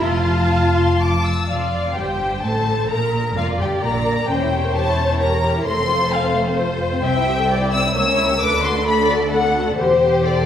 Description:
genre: quick classical-period movement for string orchestra.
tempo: 130 BPM.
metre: 3/4.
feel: rubato.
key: F major.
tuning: A4 = 439 Hz.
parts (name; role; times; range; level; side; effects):
warm studio violin section; melody; 0.0-10.5 s; C5 to E6; -21 LUFS; left 3 dB; none.
warm symphonic violin section; second line; 0.0-10.5 s; A3 to A5; -22 LUFS; left 1 dB; none.
rich symphonic viola section; accompaniment; 0.0-10.5 s; F4 to E5; -24 LUFS; right 1 dB; none.
rich symphonic cello section; bass; 0.0-10.5 s; C2 to Bb2; -24 LUFS; right 1 dB; none.
warm studio double bass section; bass; 0.0-10.5 s; E1 to D2; -25 LUFS; right 1 dB; none.
room: wet scoring stage reverb, RT60 1.8 s.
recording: heard from further back in the room.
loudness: -16 LUFS.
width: side -9 dB against mid.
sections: 0.0-1.5 A section; 1.5-10.5 B section.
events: none.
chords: 0.0 F; 2.9 Gm7; 4.3 Edim7; 5.7 F; 7.0 Am7/C (rootless); 8.0 C#dim7; 8.4 D; 9.8 C/E.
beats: | 0.04 0.53 1.01 | 1.50 1.97 2.44 | 2.90 3.37 3.83 | 4.29 4.75 5.21 | 5.67 6.13 6.59 | 7.04 7.50 7.96 | 8.41 8.88 9.34 | 9.80 10.26.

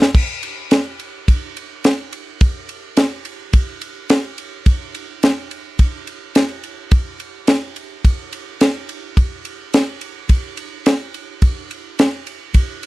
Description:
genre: blues.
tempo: 106 BPM.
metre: 4/4.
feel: swing 53% on 16ths.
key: none.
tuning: none.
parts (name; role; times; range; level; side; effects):
tight funk drum kit; drums; 0.0-12.9 s; crash cymbal, kick drum, ride cymbal, snare drum; -16 LUFS; equal; none.
room: moderate booth ambience, RT60 0.3 s.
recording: dry, close 1970s-style studio recording, lossy compression artefacts.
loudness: -16 LUFS.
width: side -19 dB against mid.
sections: 0.2-12.9 A section.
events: drum fill 0.0.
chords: none.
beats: | 0.15 0.72 1.28 1.85 | 2.41 2.97 3.54 4.10 | 4.66 5.23 5.79 6.35 | 6.92 7.48 8.04 8.61 | 9.17 9.73 10.29 10.86 | 11.42 11.98 12.54.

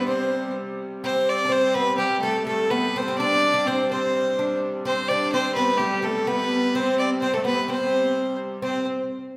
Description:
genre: medieval dance.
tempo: 126 BPM.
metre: 2/4.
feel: straight.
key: unclear.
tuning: A4 = 440 Hz.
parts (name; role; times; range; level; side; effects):
rich fiddle; melody; 0.0-8.9 s; G4 to D5; -25 LUFS; equal; none.
oud; second line; 0.0-8.9 s; G3 to D4; -32 LUFS; equal; none.
rich viola da gamba; second line; 0.0-8.9 s; G3 to D4; -31 LUFS; equal; none.
rich hurdy-gurdy; drone; 0.0-8.7 s; C3 to G3; -34 LUFS; equal; none.
room: wet recital hall reverb, RT60 1.8 s.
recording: recorded in a church or concert hall.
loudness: -23 LUFS.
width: mono.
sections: 0.0-1.0 A section; 1.0-8.6 B section.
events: none.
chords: none.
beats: | 0.06 0.54 | 1.02 1.50 | 1.98 2.46 | 2.94 3.42 | 3.90 4.38 | 4.85 5.33 | 5.80 6.28 | 6.75 7.22 | 7.70 8.17 | 8.64.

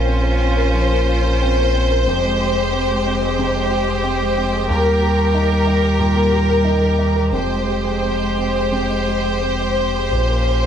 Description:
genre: neoclassical piano and strings.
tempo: 86-93 BPM.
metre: 4/4.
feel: rubato.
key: F minor.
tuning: A4 = 440 Hz.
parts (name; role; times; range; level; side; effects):
rich studio violin section; melody; 0.0-10.7 s; Bb4 to C5; -20 LUFS; left 2 dB; none.
warm cello; second line; 0.0-10.7 s; G3 to Db4; -24 LUFS; right 3 dB; tape echo.
clear viola; accompaniment; 0.0-10.7 s; F4 to G4; -27 LUFS; right 1 dB; none.
warm baby grand piano; accompaniment; 0.0-10.7 s; Eb2 to Bb4; -24 LUFS; equal; none.
rich studio string section; sustained chords; 0.0-10.7 s; Ab3 to G5; -31 LUFS; left 1 dB; none.
sub bass with octave; bass; 0.0-10.7 s; F1 to Eb2; -20 LUFS; equal; none.
room: moderate large studio reverb, RT60 0.9 s.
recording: band playing live in one room.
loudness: -15 LUFS.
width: side -8 dB against mid.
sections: 0.0-10.7 A section.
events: none.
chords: 0.0 Bbmadd9; 2.1 Fmadd9; 4.7 Eb; 7.3 Fmadd9; 10.1 Bbmadd9.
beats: 0.06 0.73 1.41 | 2.07 2.73 3.38 4.04 | 4.69 5.34 5.99 6.65 | 7.33 8.03 8.73 9.42 | 10.12.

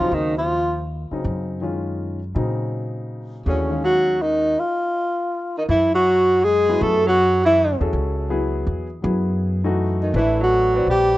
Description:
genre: modal jazz.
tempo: 162 BPM.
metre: 3/4.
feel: swing 66% on 8ths.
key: Eb dorian, F# minor from 5.7 s.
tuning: A4 = 439 Hz.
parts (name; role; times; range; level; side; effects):
breathy alto saxophone; melody; 0.0-0.8, 3.5-7.8, 10.0-11.2 s; Db4 to A4; -18 LUFS; equal; none.
warm tenor saxophone; second line; 0.0-0.8, 3.5-7.8, 10.0-11.2 s; Db3 to A3; -26 LUFS; right 2 dB; none.
warm baby grand piano; accompaniment; 0.0-4.5, 6.7-11.2 s; Db3 to F#5; -26 LUFS; left 2 dB; none.
upright bass; bass; 0.0-11.2 s; A1 to Bb2; -24 LUFS; equal; none.
room: light reverb, small room reverb.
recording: rough home demo mix, nothing above 8.0 kHz.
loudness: -18 LUFS.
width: side -16 dB against mid.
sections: 0.0-5.7 A section; 5.7-11.2 B section.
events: stop 4.6-5.7.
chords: 0.0 Ebm9; 4.6 N.C.; 5.7 F#m11; 10.1 Am11.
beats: | 0.13 0.50 0.87 | 1.24 1.61 1.98 | 2.35 2.73 3.10 | 3.47 3.84 4.21 | 4.59 4.96 5.33 | 5.70 6.07 6.44 | 6.81 7.18 7.55 | 7.92 8.29 8.66 | 9.03 9.40 9.77 | 10.14 10.51 10.88.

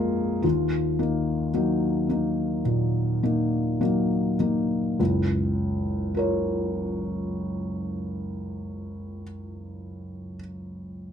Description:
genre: neoclassical minimalist piano.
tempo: 50-56 BPM.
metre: 4/4.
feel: rubato.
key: F# major.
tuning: A4 = 440 Hz.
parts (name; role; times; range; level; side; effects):
felt-muted upright piano; solo; 0.0-11.1 s; F#1 to C#5; -24 LUFS; left 1 dB; none.
room: light reverb.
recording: dark, warm production.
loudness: -23 LUFS.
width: side -8 dB against mid.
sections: 0.0-5.0 A section; 5.0-9.6 B section.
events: slowing down 0.0-5.0.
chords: 0.4 D#madd9; 5.0 F#maj7.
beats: | 0.44 1.54 2.66 3.81 | 4.99 6.14 7.28 8.44.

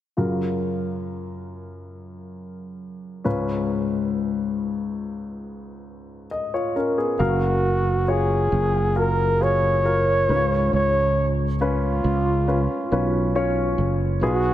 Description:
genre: pop ballad.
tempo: 68 BPM.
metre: 4/4.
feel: straight.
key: F# major.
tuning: A4 = 439 Hz.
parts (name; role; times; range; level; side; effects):
warm grand piano; accompaniment; 0.2-14.5 s; C#2 to E#5; -25 LUFS; left 2 dB; none.
mellow flugelhorn; melody; 7.2-14.5 s; E#4 to C#5; -23 LUFS; right 1 dB; digital delay.
sustaining fretless electric bass; bass; 7.2-14.5 s; F#1 to C#2; -22 LUFS; right 1 dB; lush chorus.
room: light reverb.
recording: none.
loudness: -20 LUFS.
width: side -12 dB against mid.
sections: 0.2-7.2 A section; 7.2-14.5 B section.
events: none.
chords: 0.2 F#maj7; 3.3 C#7; 7.2 F#maj7; 10.3 C#7.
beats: | 0.18 1.06 1.95 2.82 | 3.69 4.56 5.43 6.31 | 7.20 8.08 8.96 9.85 | 10.73 11.61 12.48 13.35 | 14.22.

